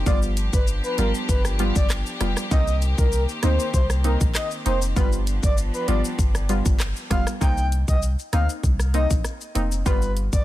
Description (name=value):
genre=dancehall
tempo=98 BPM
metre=4/4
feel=straight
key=C minor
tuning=A4 = 441 Hz
part: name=warm studio string section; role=sustained chords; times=0.0-7.4 s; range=Eb3 to G4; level=-32 LUFS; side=left 1 dB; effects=sidechain pumping
part: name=punchy sub bass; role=bass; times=0.0-10.4 s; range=F1 to D2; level=-23 LUFS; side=equal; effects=none
part: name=breathy flute-like synth lead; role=melody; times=0.1-10.4 s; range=Bb4 to G5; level=-29 LUFS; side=left 1 dB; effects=chorus, tremolo, digital delay
part: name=glassy wavetable pluck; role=accompaniment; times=0.1-10.4 s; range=G3 to F4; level=-29 LUFS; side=right 1 dB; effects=chorus
part: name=pop drum kit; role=drums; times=0.1-10.4 s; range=handclaps, hi-hat, kick drum, rim click, shaker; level=-23 LUFS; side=equal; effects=none
part: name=maracas and timbales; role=percussion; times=0.1-10.4 s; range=none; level=-39 LUFS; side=left 8 dB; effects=none
room=digital ambience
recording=none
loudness=-20 LUFS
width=side -15 dB against mid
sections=0.0-7.4 A section; 7.4-10.4 B section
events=none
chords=0.1 G7; 2.5 Cm7; 5.0 G7; 7.4 Cm7; 9.9 G7